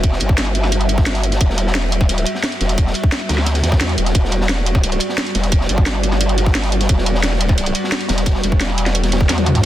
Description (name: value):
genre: dark technical drum and bass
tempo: 175 BPM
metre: 4/4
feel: straight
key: E minor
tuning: A4 = 439 Hz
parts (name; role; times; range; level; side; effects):
- dark analog pad; sustained chords; 0.0-9.7 s; G3 to E5; -23 LUFS; left 1 dB; chorus, sidechain pumping
- growl bass; bass; 0.0-9.6 s; E1 to E2; -18 LUFS; equal; chorus, overdrive
- crunchy breakbeat drum kit; drums; 0.0-9.7 s; ride cymbal, snare drum; -27 LUFS; equal; high-pass filter on cymbals, high-pass filter on snare, high-pass filter on room
- drum and bass drum kit; drums; 0.0-9.6 s; hi-hat, snare drum, toms; -21 LUFS; equal; none
- electronic kick drum; drums; 0.0-9.3 s; none; -15 LUFS; equal; none
room: digital ambience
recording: dense, heavily limited modern master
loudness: -14 LUFS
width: side -13 dB against mid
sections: 0.0-9.7 A section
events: drum fill 9.3-9.6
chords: 0.0 Emadd9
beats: | 0.04 0.38 0.72 1.06 | 1.41 1.75 2.09 2.44 | 2.78 3.12 3.46 3.81 | 4.15 4.49 4.84 5.18 | 5.52 5.86 6.21 6.55 | 6.89 7.24 7.58 7.92 | 8.26 8.61 8.95 9.29 | 9.64